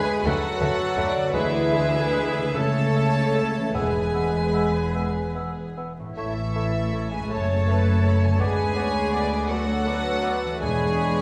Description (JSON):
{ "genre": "classical, slow romantic movement for symphony orchestra", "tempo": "47-57 BPM (dotted quarters)", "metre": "6/8", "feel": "rubato", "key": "unclear", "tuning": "A4 = 441 Hz", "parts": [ { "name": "rich studio violin section", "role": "melody", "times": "0.0-11.2 s", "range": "E5 to B5", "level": "-34 LUFS", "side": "equal", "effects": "none" }, { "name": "bright flute section", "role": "second line", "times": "0.0-11.2 s", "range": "G#4 to C#5", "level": "-36 LUFS", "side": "equal", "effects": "none" }, { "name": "clear studio violin section", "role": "second line", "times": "0.0-11.2 s", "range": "E4 to A4", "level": "-35 LUFS", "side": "equal", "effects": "none" }, { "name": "warm oboe", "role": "second line", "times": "0.0-11.2 s", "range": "B4 to E5", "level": "-38 LUFS", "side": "equal", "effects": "none" }, { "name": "mellow bassoon", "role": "accompaniment", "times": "0.0-11.2 s", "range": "G#3 to D4", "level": "-36 LUFS", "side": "equal", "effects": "none" }, { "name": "rich studio viola section", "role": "accompaniment", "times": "0.0-11.2 s", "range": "G#4 to D5", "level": "-34 LUFS", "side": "equal", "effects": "none" }, { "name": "mellow French horn section", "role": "sustained chords", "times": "0.0-11.2 s", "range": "E3 to A3", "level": "-30 LUFS", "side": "equal", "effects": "none" }, { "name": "concert harp", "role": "arpeggios", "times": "0.0-11.2 s", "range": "F#2 to D5", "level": "-38 LUFS", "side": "equal", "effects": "none" }, { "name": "warm chamber double bass section", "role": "bass", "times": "0.2-11.2 s", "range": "E1 to D2", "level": "-30 LUFS", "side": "equal", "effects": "none" }, { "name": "warm studio cello section", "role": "bass", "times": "0.3-11.2 s", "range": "D2 to D3", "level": "-32 LUFS", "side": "equal", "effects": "none" }, { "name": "timpani", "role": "percussion", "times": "3.7-4.9, 10.6-11.2 s", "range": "E2", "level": "-34 LUFS", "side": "equal", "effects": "none" } ], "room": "wet concert hall reverb, RT60 1.8 s", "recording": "recorded in a church or concert hall, vinyl crackle", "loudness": "-23 LUFS", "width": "mono", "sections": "0.0-11.2 A section", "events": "none", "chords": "0.0 Bm7/D; 1.3 E7/D; 2.6 A/C#; 3.8 E; 6.2 A; 7.3 F#m; 8.4 Bm7/D; 10.6 E13", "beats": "0.26 | 1.33 2.56 | 3.75 4.94 | 6.17 7.31 | 8.41 9.49 | 10.62" }